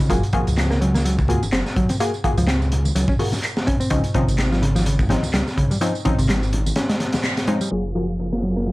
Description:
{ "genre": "breakbeat, breaks", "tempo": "126 BPM", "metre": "4/4", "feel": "swing 57% on 16ths", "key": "Gb lydian", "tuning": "A4 = 440 Hz", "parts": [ { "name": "picked electric bass", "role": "riff", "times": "0.0-8.7 s", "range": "C3 to Db4", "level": "-23 LUFS", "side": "equal", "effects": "tube saturation, low-pass filter" }, { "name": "filtered dub chord stab", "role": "stabs", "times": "0.0-8.1 s", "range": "F3 to Ab4", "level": "-26 LUFS", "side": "left 1 dB", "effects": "chorus, cassette tape, dub echo" }, { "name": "crunchy breakbeat drum kit", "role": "drums", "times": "0.0-8.7 s", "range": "hi-hat, kick drum, snare drum", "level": "-22 LUFS", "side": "equal", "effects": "high-pass filter on kick, high-pass filter on hats, high-pass filter on snare, high-pass filter on room" }, { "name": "electronic tambourine and handclaps", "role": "drums", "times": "0.0-8.7 s", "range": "none", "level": "-30 LUFS", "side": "right 1 dB", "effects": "low-pass filter on perc, low-pass filter on snare" }, { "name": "detuned saw bass", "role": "bass", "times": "0.1-8.7 s", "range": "Gb1 to Db2", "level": "-22 LUFS", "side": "equal", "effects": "none" }, { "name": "congas", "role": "percussion", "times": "0.3-7.2 s", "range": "none", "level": "-29 LUFS", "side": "left 1 dB", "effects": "none" }, { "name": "tonewheel organ", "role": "sustained chords", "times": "7.7-8.7 s", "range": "F3 to Ab4", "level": "-31 LUFS", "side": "right 2 dB", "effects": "overdrive, chorus vibrato, slow rotary speaker, sidechain pumping, low-pass filter" } ], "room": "light reverb", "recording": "vinyl crackle, low-pass filter", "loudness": "-18 LUFS", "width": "side -20 dB against mid", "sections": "0.0-7.7 A section; 7.7-8.7 B section", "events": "kick drops out 6.8-7.7; band accent 7.2; filter sweep on drum 7.7-8.7; filter sweep on picked electric bass 7.7-8.7; filter sweep 7.7-8.7", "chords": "0.1 Gbmaj9; 3.9 Dbmaj9; 7.7 Gbmaj9" }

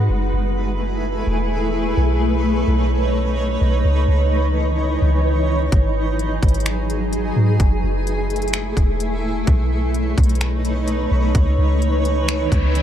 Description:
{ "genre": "hip hop, atmospheric cloud-rap", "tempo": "128 BPM", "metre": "4/4", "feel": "half-time", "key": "F# dorian", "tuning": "A4 = 440 Hz", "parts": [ { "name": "granular cloud pad", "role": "sustained chords", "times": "0.0-12.8 s", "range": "E3 to C#5", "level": "-21 LUFS", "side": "equal", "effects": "built-in reverb, sidechain pumping" }, { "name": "soft 808-style bass", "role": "bass", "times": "0.0-12.8 s", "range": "E1 to G#2", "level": "-19 LUFS", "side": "equal", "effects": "none" }, { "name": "trap drum kit", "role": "drums", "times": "5.7-12.8 s", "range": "finger snaps, hi-hat, kick drum", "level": "-18 LUFS", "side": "equal", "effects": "none" }, { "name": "reverse cymbal", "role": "sound effects", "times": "12.4-12.8 s", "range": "none", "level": "-30 LUFS", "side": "left 4 dB", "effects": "none" } ], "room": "little or no reverb", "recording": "dark, warm production", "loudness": "-16 LUFS", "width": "side -10 dB against mid", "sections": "0.0-12.8 A section", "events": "reverse cymbal 12.4-12.8", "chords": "0.1 F#m11; 2.0 B9; 3.8 C#m9; 5.7 G#m7; 7.6 F#m11; 9.5 B9; 11.3 C#m9" }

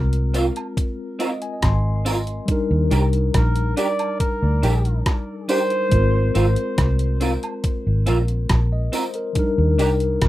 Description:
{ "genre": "lovers rock reggae", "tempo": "70 BPM", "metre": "4/4", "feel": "straight", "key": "unclear", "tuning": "A4 = 440 Hz", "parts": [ { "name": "mellow tine electric piano", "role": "accompaniment", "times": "0.0-10.3 s", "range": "F3 to C6", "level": "-25 LUFS", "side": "left 3 dB", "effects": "medium stereo tremolo, tape echo" }, { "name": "vintage muted fingered electric bass", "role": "bass", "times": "0.0-10.3 s", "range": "Ab1 to Eb2", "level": "-19 LUFS", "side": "equal", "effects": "none" }, { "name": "detuned 8-bit digital drum machine", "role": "drums", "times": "0.1-10.3 s", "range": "hi-hat, kick drum, rim click", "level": "-22 LUFS", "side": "equal", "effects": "overdrive" }, { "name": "electric guitar through a small old amp", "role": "stabs", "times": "0.3-9.9 s", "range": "C4 to Bb4", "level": "-23 LUFS", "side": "right 2 dB", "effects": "ensemble chorus" }, { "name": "tambourine and woodblock", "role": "percussion", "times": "0.3-10.0 s", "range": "none", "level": "-34 LUFS", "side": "right 3 dB", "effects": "none" }, { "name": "warm flugelhorn", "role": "melody", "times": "3.3-10.3 s", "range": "Bb4 to D5", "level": "-26 LUFS", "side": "right 2 dB", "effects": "tape echo" } ], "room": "light reverb", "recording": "rough home demo mix", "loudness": "-18 LUFS", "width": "side -15 dB against mid", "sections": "0.0-10.3 A section", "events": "tine electric piano fill 0.8-2.5", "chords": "0.0 Ab69; 2.5 Ebmaj7; 5.9 Ab69; 9.4 Ebmaj7" }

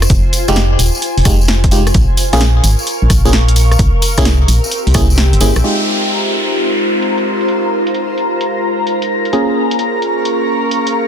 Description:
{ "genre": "UK garage, two-step garage", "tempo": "130 BPM", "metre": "4/4", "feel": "swing 67% on 16ths", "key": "F minor", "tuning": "A4 = 439 Hz", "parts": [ { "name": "organ-like FM bass", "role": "bass", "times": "0.0-5.6 s", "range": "Eb1 to C2", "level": "-12 LUFS", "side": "equal", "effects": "tube saturation" }, { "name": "punchy analog drum machine", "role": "drums", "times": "0.0-10.9 s", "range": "hi-hat, rim click, snare drum", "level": "-19 LUFS", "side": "right 1 dB", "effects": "low-pass filter on hats, low-pass filter on snare" }, { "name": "tambourine", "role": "percussion", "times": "0.0-5.6 s", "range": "none", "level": "-23 LUFS", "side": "left 4 dB", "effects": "none" }, { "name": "granular cloud pad", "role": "texture", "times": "0.0-11.1 s", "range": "C4 to Db6", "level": "-19 LUFS", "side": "equal", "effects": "built-in reverb, sidechain pumping" }, { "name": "electronic kick drum", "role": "drums", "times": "0.1-5.1 s", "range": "none", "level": "-14 LUFS", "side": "equal", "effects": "none" }, { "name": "FM electric piano", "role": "stabs", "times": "0.5-11.1 s", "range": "Ab3 to Ab4", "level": "-18 LUFS", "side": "equal", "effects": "chorus, low-pass filter, ping-pong delay" }, { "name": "airy breathy pad", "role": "sustained chords", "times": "5.9-11.1 s", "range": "Bb4 to Bb5", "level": "-20 LUFS", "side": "left 1 dB", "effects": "chorus, phaser, sidechain pumping" }, { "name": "downlifter", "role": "sound effects", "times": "5.6-9.3 s", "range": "none", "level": "-20 LUFS", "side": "equal", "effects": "none" } ], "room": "light reverb", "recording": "dense, heavily limited modern master", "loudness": "-11 LUFS", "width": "side -8 dB against mid", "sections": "0.0-5.6 A section; 5.6-11.1 B section", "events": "kick drops out 5.2-5.6; filter sweep on drum 5.6-11.1", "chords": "0.0 Fm9; 1.9 Bbm7; 3.8 C7b9b13; 5.6 Fm9; 9.3 Bbm7" }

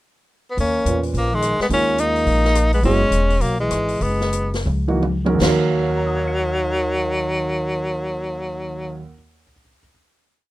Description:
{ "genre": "modal jazz", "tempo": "150-213 BPM", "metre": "4/4", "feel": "swing 61% on 8ths", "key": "Eb minor", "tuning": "A4 = 440 Hz", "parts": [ { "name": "edgy tenor saxophone", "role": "melody", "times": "0.5-9.0 s", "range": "Gb3 to Eb4", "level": "-21 LUFS", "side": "equal", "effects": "none" }, { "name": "mellow trombone", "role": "second line", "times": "0.6-9.0 s", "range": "Eb3 to Bb3", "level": "-26 LUFS", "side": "left 2 dB", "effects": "none" }, { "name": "upright bass", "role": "bass", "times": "0.6-9.0 s", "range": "Fb1 to Fb2", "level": "-23 LUFS", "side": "equal", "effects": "none" }, { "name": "open jazz drum kit", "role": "drums", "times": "0.6-5.5 s", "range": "crash cymbal, hi-hat, rim click, snare drum, toms", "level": "-26 LUFS", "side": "left 2 dB", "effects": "none" }, { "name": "warm concert grand piano", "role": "accompaniment", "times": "0.9-9.9 s", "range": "Eb2 to Db7", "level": "-24 LUFS", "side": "right 4 dB", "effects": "none" } ], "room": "little or no reverb", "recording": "rough home demo mix", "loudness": "-17 LUFS", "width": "side -17 dB against mid", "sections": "0.0-0.6 pickup bar; 0.6-5.4 A section; 5.4-8.6 final chord", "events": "slowing down 2.8-5.4; drum fill 4.7-5.4", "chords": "0.0 N.C.; 0.6 Eb9sus4; 2.8 Gb9sus4; 5.4 Ebm" }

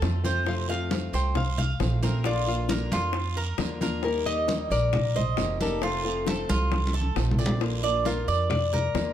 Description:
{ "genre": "latin, Cuban son and guajira", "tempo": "134 BPM", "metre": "4/4", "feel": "straight", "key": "Bb major", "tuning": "A4 = 442 Hz", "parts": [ { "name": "nylon-string guitar", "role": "melody", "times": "0.0-9.1 s", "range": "A4 to G5", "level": "-31 LUFS", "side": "left 4 dB", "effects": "plate reverb" }, { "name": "fingerpicked acoustic archtop guitar", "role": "accompaniment", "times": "0.0-9.1 s", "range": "C3 to G4", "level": "-33 LUFS", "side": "left 5 dB", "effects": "none" }, { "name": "Cuban tres", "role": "arpeggios", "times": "0.0-9.1 s", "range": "F4 to F5", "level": "-31 LUFS", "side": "right 5 dB", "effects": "none" }, { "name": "upright bass", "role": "bass", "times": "0.0-9.1 s", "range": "F1 to F2", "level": "-28 LUFS", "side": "right 1 dB", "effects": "none" }, { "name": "bongos", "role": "percussion", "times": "0.0-9.1 s", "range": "none", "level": "-34 LUFS", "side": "left 7 dB", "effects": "none" }, { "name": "congas", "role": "percussion", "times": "0.0-9.1 s", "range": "none", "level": "-31 LUFS", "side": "left 1 dB", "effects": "none" }, { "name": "guiro", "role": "percussion", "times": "0.0-9.1 s", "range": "none", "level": "-40 LUFS", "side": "right 8 dB", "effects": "none" } ], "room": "moderate studio reverb, RT60 0.8 s", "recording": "none", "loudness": "-24 LUFS", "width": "side -11 dB against mid", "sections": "0.0-7.6 A section; 7.6-9.1 B section", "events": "drum fill 6.7-7.6", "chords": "0.0 F; 2.3 Bb; 4.0 Eb; 5.8 F; 7.6 Bb" }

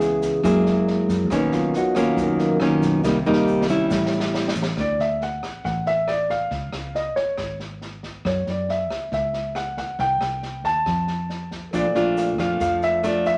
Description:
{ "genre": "bossa nova", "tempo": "138 BPM", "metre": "4/4", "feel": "straight", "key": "unclear", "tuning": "A4 = 440 Hz", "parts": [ { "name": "nylon-string guitar", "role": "accompaniment", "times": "0.0-4.8, 11.7-13.4 s", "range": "F#2 to Ab4", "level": "-23 LUFS", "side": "equal", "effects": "none" }, { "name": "tine electric piano", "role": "accompaniment", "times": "0.0-4.8, 11.7-13.4 s", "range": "D#3 to F#5", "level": "-29 LUFS", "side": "equal", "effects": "none" }, { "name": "fingered electric bass", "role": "bass", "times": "0.0-13.4 s", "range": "G#1 to Gb2", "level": "-32 LUFS", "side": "equal", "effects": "none" }, { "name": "open jazz drum kit", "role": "drums", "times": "0.0-13.3 s", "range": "kick drum, rim click, snare drum", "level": "-35 LUFS", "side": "equal", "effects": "none" }, { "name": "tube shaker", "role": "percussion", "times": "0.0-4.8, 11.7-13.4 s", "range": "none", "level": "-50 LUFS", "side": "equal", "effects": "none" }, { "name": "dark baby grand piano", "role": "melody", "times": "4.8-13.4 s", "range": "C#5 to A5", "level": "-26 LUFS", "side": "equal", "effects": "none" } ], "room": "wet studio reverb, RT60 0.6 s", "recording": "none", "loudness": "-22 LUFS", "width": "mono", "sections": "0.0-4.8 A section; 4.8-13.4 B section", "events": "drum fill 3.0-4.8", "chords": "0.4 Gb9; 1.3 Bmaj9; 3.0 Cm7; 3.9 A7; 4.8 D; 6.5 C#; 8.3 F#5; 10.0 Cm; 10.9 F; 11.7 Bbmaj7" }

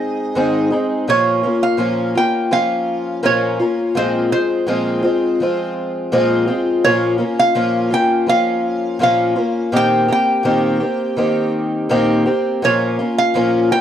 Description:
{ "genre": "acoustic folk duo or small band", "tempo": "83 BPM", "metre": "4/4", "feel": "straight", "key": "Bb dorian", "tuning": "A4 = 441 Hz", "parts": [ { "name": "lap resonator guitar", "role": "melody", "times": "0.0-13.8 s", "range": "C5 to G5", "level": "-18 LUFS", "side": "right 2 dB", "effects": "none" }, { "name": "fingerpicked twelve-string acoustic guitar", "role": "accompaniment", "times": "0.0-13.8 s", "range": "Ab2 to Ab4", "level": "-16 LUFS", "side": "left 1 dB", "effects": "none" } ], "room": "light reverb, small room ambience", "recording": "dry, close 1970s-style studio recording", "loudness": "-14 LUFS", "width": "side -10 dB against mid", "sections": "0.0-1.1 A section; 1.1-13.8 B section", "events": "none", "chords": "0.0 Ab; 1.1 Bbm; 4.0 Fm/Bb; 6.9 Bbm; 9.7 Cm/Bb; 12.6 Bbm" }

